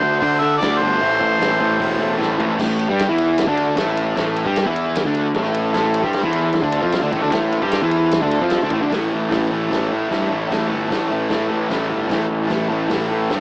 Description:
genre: garage rock duo or trio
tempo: 152 BPM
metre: 4/4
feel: straight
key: A minor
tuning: A4 = 440 Hz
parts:
  - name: mellow harmonica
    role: melody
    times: 0.0-2.2 s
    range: C5 to E5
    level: -18 LUFS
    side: equal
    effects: overdrive, cassette tape
  - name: combo organ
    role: sustained chords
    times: 0.0-2.6, 5.7-8.9 s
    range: E4 to D5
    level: -26 LUFS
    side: equal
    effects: cassette tape
  - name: fuzz guitar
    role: riff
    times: 0.0-13.4 s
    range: A2 to G4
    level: -19 LUFS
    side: equal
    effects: distortion, cassette tape
  - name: fuzz picked electric bass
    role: bass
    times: 0.0-13.4 s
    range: E1 to D3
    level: -22 LUFS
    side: equal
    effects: overdrive
  - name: vintage drum kit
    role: drums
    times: 0.0-13.4 s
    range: crash cymbal, hi-hat, kick drum, ride cymbal, snare drum, toms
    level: -26 LUFS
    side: equal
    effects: cassette tape
room: light reverb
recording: home recording on cassette, small speaker sound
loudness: -16 LUFS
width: side -26 dB against mid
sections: 0.0-2.6 A section; 2.6-8.9 B section; 8.9-13.4 C section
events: drum fill 2.2-2.6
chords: 0.0 D; 1.0 Am; 8.9 A5

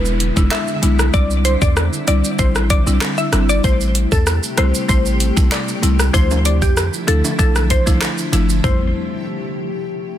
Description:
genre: dancehall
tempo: 96 BPM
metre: 4/4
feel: straight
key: A minor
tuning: A4 = 440 Hz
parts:
  - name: glassy wavetable pluck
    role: melody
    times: 0.0-8.9 s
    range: G4 to E5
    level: -22 LUFS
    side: left 2 dB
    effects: chorus, digital delay
  - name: buzzing marimba with medium hard mallets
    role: accompaniment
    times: 0.0-8.9 s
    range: F3 to E4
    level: -22 LUFS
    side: left 2 dB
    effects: none
  - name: granular cloud pad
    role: sustained chords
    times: 0.0-8.9 s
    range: C3 to G4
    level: -26 LUFS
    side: left 1 dB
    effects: built-in reverb, sidechain pumping
  - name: warm 808-style bass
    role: bass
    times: 0.0-8.9 s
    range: E1 to F2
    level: -17 LUFS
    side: equal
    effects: none
  - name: downlifter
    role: sound effects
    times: 0.0-3.6 s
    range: none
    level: -35 LUFS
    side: right 2 dB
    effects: none
  - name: pop drum kit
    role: drums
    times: 0.1-8.8 s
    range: handclaps, hi-hat, kick drum, rim click, shaker, toms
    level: -18 LUFS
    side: equal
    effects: overdrive, soft clipping on snare
  - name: maracas and timbales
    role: percussion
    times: 3.6-8.9 s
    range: none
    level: -30 LUFS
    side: right 8 dB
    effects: none
room: digital ambience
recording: dense, heavily limited modern master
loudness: -14 LUFS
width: side -11 dB against mid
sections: 0.0-8.6 A section; 8.6-10.2 B section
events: none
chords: 0.0 E7; 1.1 Cadd9; 3.6 Am7; 6.1 Dmadd9; 8.6 Am7

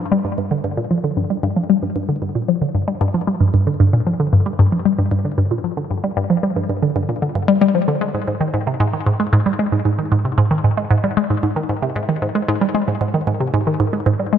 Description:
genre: ambient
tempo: 114 BPM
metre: 4/4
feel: straight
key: G phrygian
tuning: A4 = 443 Hz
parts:
  - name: hollow square pluck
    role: solo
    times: 0.0-14.4 s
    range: G2 to Ab3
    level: -16 LUFS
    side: equal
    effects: chorus, phaser, ping-pong delay
room: moderate lush hall reverb, RT60 2.4 s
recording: nothing above 11.0 kHz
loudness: -16 LUFS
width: side -9 dB against mid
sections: 0.0-14.4 A section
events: none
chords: none

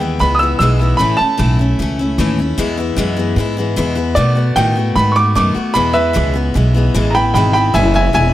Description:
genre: rockabilly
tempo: 151 BPM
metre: 4/4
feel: straight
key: E major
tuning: A4 = 440 Hz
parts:
  - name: clear upright piano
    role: melody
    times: 0.0-1.6, 4.2-8.3 s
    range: B4 to E6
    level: -15 LUFS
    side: right 2 dB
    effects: none
  - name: picked steel-string acoustic guitar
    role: accompaniment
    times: 0.0-8.3 s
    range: E2 to F#4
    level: -18 LUFS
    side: left 3 dB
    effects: none
  - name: upright bass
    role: bass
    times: 0.0-8.3 s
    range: E1 to B2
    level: -16 LUFS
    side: equal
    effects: none
room: light reverb, studio ambience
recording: none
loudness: -12 LUFS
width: side -14 dB against mid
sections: 0.0-8.3 A section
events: none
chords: 0.0 E; 1.0 A; 2.6 E; 4.2 B7; 5.8 E

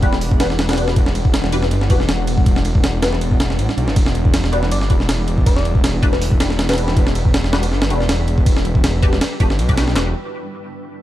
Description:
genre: drum and bass, jungle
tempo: 160 BPM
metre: 4/4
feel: swing 54% on 16ths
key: E minor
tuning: A4 = 440 Hz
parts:
  - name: soft struck synth lead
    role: melody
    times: 0.0-0.2, 4.5-6.3 s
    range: G4 to D5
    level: -30 LUFS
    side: left 2 dB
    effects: chorus, phaser, dub echo
  - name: granular cloud pad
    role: sustained chords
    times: 0.0-10.1 s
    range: G3 to F#5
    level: -27 LUFS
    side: left 1 dB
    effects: built-in reverb, vintage 12-bit sampler grit
  - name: filtered dub chord stab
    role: stabs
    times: 0.0-10.1 s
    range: D4 to B4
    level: -25 LUFS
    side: left 2 dB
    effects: phaser, ensemble chorus, dub echo
  - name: detuned saw bass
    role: bass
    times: 0.0-10.1 s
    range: E1 to B1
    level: -19 LUFS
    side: equal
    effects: none
  - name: jungle sampler-style drum kit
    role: drums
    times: 0.0-10.1 s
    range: handclaps, hi-hat, kick drum, ride cymbal, snare drum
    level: -16 LUFS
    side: equal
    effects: none
room: digital ambience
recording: dark, warm production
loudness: -14 LUFS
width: side -14 dB against mid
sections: 0.0-10.0 A section; 10.0-11.0 B section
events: drop 0.0-10.0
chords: 0.0 Em9

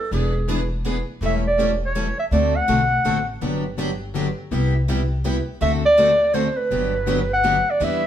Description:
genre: acoustic string swing (jazz manouche)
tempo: 164 BPM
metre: 3/4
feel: swing 63% on 8ths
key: G major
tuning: A4 = 441 Hz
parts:
  - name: warm clarinet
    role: melody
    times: 0.0-3.3, 5.6-8.1 s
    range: G#4 to F#5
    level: -19 LUFS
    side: right 1 dB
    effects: none
  - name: picked plugged-in steel-string acoustic guitar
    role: accompaniment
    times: 0.1-8.0 s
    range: C3 to A4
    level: -26 LUFS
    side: left 4 dB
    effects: none
  - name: picked steel-string acoustic guitar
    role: accompaniment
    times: 0.1-8.0 s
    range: C3 to B4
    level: -28 LUFS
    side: right 4 dB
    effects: none
  - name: upright bass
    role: bass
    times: 0.1-8.1 s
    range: E1 to E2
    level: -24 LUFS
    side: equal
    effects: none
room: moderate stone room reverb, RT60 1.1 s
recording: band playing live in one room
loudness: -18 LUFS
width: side -10 dB against mid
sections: 0.0-7.8 A section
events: none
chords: 0.1 E7; 1.2 A7/E; 2.3 D7; 3.4 Gmaj7; 4.5 Cmaj7; 5.6 D7; 6.7 Gmaj7

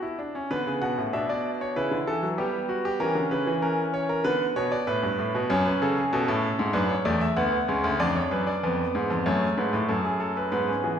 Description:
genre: classical, baroque-style 3-part fugue for grand piano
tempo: 96 BPM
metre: 4/4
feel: straight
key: B minor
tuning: A4 = 440 Hz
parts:
  - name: bright concert grand piano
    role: solo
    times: 0.0-11.0 s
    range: C#2 to B5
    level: -23 LUFS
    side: equal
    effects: none
room: wet recital hall reverb, RT60 1.4 s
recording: recorded in a church or concert hall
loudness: -23 LUFS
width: side -8 dB against mid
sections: 0.5-10.5 A section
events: none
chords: 0.0 Bm; 1.8 C#m7b5 (rootless); 3.0 A#dim; 4.3 Bm; 5.5 F#m; 6.7 Bm11; 8.0 Fdim7(no3); 9.3 F#m

